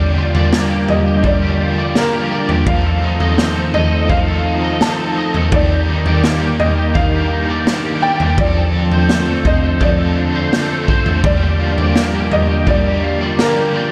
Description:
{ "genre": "dream pop", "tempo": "84 BPM", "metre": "4/4", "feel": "straight", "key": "G minor", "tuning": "A4 = 440 Hz", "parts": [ { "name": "felt-muted upright piano", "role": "melody", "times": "0.0-13.9 s", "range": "Bb4 to A5", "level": "-24 LUFS", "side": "equal", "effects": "analog delay" }, { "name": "biting overdriven guitar", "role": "accompaniment", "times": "0.0-13.9 s", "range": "G2 to A4", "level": "-25 LUFS", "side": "equal", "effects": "tremolo, lush chorus" }, { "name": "lush unison pad", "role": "sustained chords", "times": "0.0-13.9 s", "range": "F2 to Bb4", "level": "-23 LUFS", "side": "equal", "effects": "chorus" }, { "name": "electric guitar at the edge of break-up", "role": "arpeggios", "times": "0.0-13.9 s", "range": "Eb3 to Eb5", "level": "-23 LUFS", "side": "equal", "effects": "ensemble chorus, analog delay" }, { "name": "raw garage drum kit", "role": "drums", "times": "0.3-13.6 s", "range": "kick drum, snare drum, toms", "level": "-18 LUFS", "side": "equal", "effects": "none" } ], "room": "wet lush hall reverb, RT60 2.9 s", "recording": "dreamy mix soaked in reverb", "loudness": "-15 LUFS", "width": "mono", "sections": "0.0-13.9 A section", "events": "none", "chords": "0.0 Gm7; 2.7 F7; 5.5 Ebmaj7; 8.4 Dm7/F; 11.2 Gm7" }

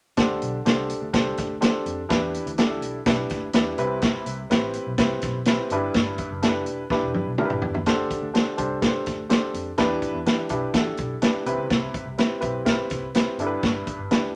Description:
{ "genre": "uptempo 1960s-style soul", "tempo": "125 BPM", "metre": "4/4", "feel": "straight", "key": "unclear", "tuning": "A4 = 440 Hz", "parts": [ { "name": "warm upright piano", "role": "accompaniment", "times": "0.2-14.3 s", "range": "G2 to C5", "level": "-28 LUFS", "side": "equal", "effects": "none" }, { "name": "vintage muted picked electric bass", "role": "bass", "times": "0.2-14.3 s", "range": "E1 to E3", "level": "-36 LUFS", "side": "equal", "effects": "none" }, { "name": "vintage drum kit", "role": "drums", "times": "0.2-14.2 s", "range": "hi-hat, kick drum, snare drum, toms", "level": "-25 LUFS", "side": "equal", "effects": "none" } ], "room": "moderate studio reverb, RT60 0.8 s", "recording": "none", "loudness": "-24 LUFS", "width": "mono", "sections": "0.2-7.9 A section; 7.9-14.4 B section", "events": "drum fill 6.9-7.9", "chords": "0.2 D7sus4; 2.1 Em7; 3.8 Cmaj7; 5.7 G6; 7.9 D7sus4; 9.8 Em7; 11.5 Cmaj7; 13.4 G6" }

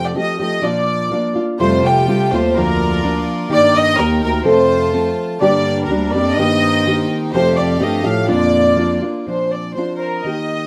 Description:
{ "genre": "mexican folk, mariachi", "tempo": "125 BPM", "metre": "2/4", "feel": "straight", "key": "Bb major", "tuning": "A4 = 440 Hz", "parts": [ { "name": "warm studio violin section", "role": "melody", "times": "0.0-10.7 s", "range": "Bb4 to G5", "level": "-20 LUFS", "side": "equal", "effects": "none" }, { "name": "nylon-string guitar", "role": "accompaniment", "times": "0.0-10.7 s", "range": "F2 to A4", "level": "-20 LUFS", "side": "equal", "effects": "none" }, { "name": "breathy bass clarinet", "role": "second line", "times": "1.6-9.0 s", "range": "D2 to C3", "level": "-23 LUFS", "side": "equal", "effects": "none" }, { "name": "bright studio violin section", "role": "sustained chords", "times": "1.6-9.2 s", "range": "G3 to A5", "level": "-30 LUFS", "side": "equal", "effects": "none" } ], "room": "moderate studio reverb, RT60 0.6 s", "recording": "none", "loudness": "-16 LUFS", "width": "mono", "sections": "0.0-1.6 A section; 1.6-9.3 A section; 9.3-10.7 B section", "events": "none", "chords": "0.0 Fadd9; 0.6 Bb; 1.6 Fadd9; 2.6 Bb; 3.5 Eb; 4.5 F; 5.4 Gm; 6.4 Eb6; 7.3 Fadd9; 8.3 Bb; 9.3 Bbadd9" }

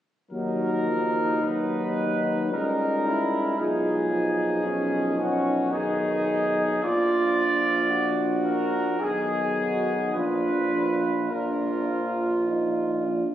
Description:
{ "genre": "classical, hymn-like piece for brass band", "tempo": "55 BPM", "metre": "3/4", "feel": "uneven beats, rubato", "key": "Eb minor", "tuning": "A4 = 439 Hz", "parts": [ { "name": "dark trumpet section", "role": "melody", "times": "0.3-12.5 s", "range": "Gb4 to D5", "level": "-28 LUFS", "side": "left 1 dB", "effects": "none" }, { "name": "warm flugelhorn", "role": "second line", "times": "0.3-13.2 s", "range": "Db4 to Ab4", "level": "-27 LUFS", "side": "right 3 dB", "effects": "none" }, { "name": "clear euphonium", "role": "accompaniment", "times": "0.3-13.3 s", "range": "D4 to Gb4", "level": "-29 LUFS", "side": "left 1 dB", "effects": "none" }, { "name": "clear trombone", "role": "accompaniment", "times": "0.3-13.2 s", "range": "Eb3 to Ab3", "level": "-33 LUFS", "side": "right 1 dB", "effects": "none" }, { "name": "clear tuba", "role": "bass", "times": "0.3-13.2 s", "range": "Bb1 to Eb2", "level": "-30 LUFS", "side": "left 2 dB", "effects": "none" } ], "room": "moderate scoring stage reverb, RT60 1.7 s", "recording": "recorded on a phone in the room, studio reverb", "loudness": "-22 LUFS", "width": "side -11 dB against mid", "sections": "0.3-13.3 A section", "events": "none", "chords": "0.3 Ebm; 2.5 Eb7/Db; 3.6 Abm/Cb; 6.8 Bb; 9.0 Abm/Cb; 10.2 Bb" }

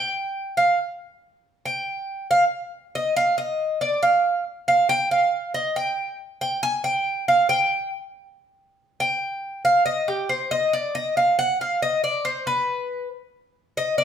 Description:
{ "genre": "latin", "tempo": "139 BPM", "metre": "4/4", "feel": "straight", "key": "unclear", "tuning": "A4 = 440 Hz", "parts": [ { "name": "Cuban tres", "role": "solo", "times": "0.0-14.0 s", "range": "G4 to Ab5", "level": "-20 LUFS", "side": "right 1 dB", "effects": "none" } ], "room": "wet large studio reverb, RT60 1.0 s", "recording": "band playing live in one room", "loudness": "-20 LUFS", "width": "side -8 dB against mid", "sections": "0.0-14.0 A section", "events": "Cuban tres solo 0.0-14.0", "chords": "none" }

